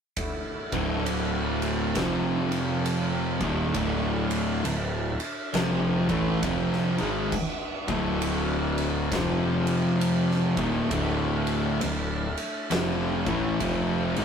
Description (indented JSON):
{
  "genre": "stoner and doom metal",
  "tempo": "67 BPM",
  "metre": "4/4",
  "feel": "swing 62% on 8ths",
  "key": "D minor",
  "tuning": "A4 = 439 Hz",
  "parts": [
    { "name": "bright tonewheel organ", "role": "sustained chords", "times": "0.2-14.2 s", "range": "D3 to E5", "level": "-38 LUFS", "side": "equal", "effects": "none" },
    { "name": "oversized low-tuned drum kit", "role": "drums", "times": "0.2-14.2 s", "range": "crash cymbal, kick drum, ride cymbal, snare drum", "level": "-32 LUFS", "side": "equal", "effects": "none" },
    { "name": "overdriven electric guitar", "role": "riff", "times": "0.7-14.2 s", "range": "D2 to A3", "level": "-31 LUFS", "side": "left 1 dB", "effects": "none" },
    { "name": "thick fuzz guitar", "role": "riff", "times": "0.7-14.2 s", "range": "D2 to A3", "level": "-30 LUFS", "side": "left 6 dB", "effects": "distortion" },
    { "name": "thick fuzz guitar", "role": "riff", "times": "0.7-14.2 s", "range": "D2 to A3", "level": "-29 LUFS", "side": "right 6 dB", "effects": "distortion" },
    { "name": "fuzz picked electric bass", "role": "bass", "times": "0.7-14.2 s", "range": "D1 to A1", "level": "-31 LUFS", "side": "equal", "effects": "overdrive" }
  ],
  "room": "light reverb",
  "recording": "rough rehearsal-room recording, tube saturation",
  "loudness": "-24 LUFS",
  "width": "side -7 dB against mid",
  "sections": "0.2-14.2 A section",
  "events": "none",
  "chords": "0.2 D5; 2.0 F5; 3.3 Dm; 9.1 F5; 10.5 Dm",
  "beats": "| 0.17 1.07 1.96 2.86 | 3.75 4.65 5.54 6.44 | 7.33 8.23 9.12 10.02 | 10.92 11.82 12.71 13.61"
}